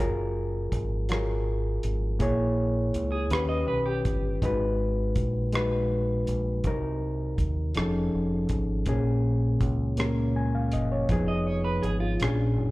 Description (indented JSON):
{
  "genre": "slow six-eight R&B",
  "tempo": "54 BPM (dotted quarters)",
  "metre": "6/8",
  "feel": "straight",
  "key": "unclear",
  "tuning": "A4 = 440 Hz",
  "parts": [
    { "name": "overdriven reed electric piano", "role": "accompaniment", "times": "0.0-12.7 s", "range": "A#2 to G#5", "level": "-28 LUFS", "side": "left 1 dB", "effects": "slapback echo" },
    { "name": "deep dub fingered electric bass", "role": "bass", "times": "0.0-12.7 s", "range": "F1 to D#2", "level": "-28 LUFS", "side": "equal", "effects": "none" },
    { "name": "cloth-damped thuddy drum kit", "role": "drums", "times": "0.7-12.4 s", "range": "hi-hat, kick drum, rim click", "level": "-30 LUFS", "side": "equal", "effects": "none" },
    { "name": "semi-hollow electric guitar", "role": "second line", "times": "3.1-4.4, 11.3-12.4 s", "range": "F4 to D#5", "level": "-32 LUFS", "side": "right 3 dB", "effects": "harmonic tremolo, slapback echo" }
  ],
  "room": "small room ambience",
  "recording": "live gig heard through the venue's PA, club ambience",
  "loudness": "-24 LUFS",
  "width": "side -19 dB against mid",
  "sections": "0.0-12.7 A section",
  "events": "none",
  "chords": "0.0 F#maj9; 2.2 A#m7b5; 3.3 D#7b13; 4.4 G#m7; 6.6 Cm7b5; 7.8 F7alt; 8.9 A#m7; 11.1 Fm7b5; 12.2 A#7alt"
}